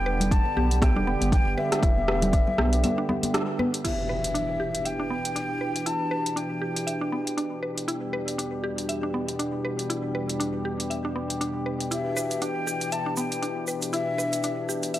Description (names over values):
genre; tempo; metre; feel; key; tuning
afro house; 119 BPM; 4/4; swing 57% on 16ths; E minor; A4 = 444 Hz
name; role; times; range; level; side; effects
breathy mellow jazz flute; melody; 0.0-7.6, 11.9-14.9 s; E5 to A5; -30 LUFS; left 2 dB; analog delay
warm analog pad; sustained chords; 0.0-15.0 s; E2 to G4; -30 LUFS; equal; chorus, sidechain pumping
warm sub bass; bass; 0.0-2.8 s; E1 to B1; -26 LUFS; equal; transformer saturation, sidechain pumping
mallet-like synth pluck; arpeggios; 0.1-15.0 s; B3 to E5; -33 LUFS; equal; chorus, sidechain pumping, analog delay
deep house drum kit; drums; 0.2-15.0 s; crash cymbal, hi-hat, rim click; -30 LUFS; equal; overdrive
congas; percussion; 0.2-3.7 s; none; -29 LUFS; left 1 dB; none
electronic kick drum; drums; 0.3-2.4 s; none; -22 LUFS; equal; overdrive
impact; sound effects; 3.8-5.9 s; none; -36 LUFS; equal; none
egg shaker; percussion; 11.9-15.0 s; none; -36 LUFS; right 3 dB; none
room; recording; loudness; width
light reverb, digital ambience; dry, gritty hardware recording; -24 LUFS; side -13 dB against mid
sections
0.0-3.8 A section; 3.8-15.0 B section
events
break 2.8-3.8; band accent 3.3; impact 3.8-5.9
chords
0.0 Em7; 7.9 G/E; 11.9 Em7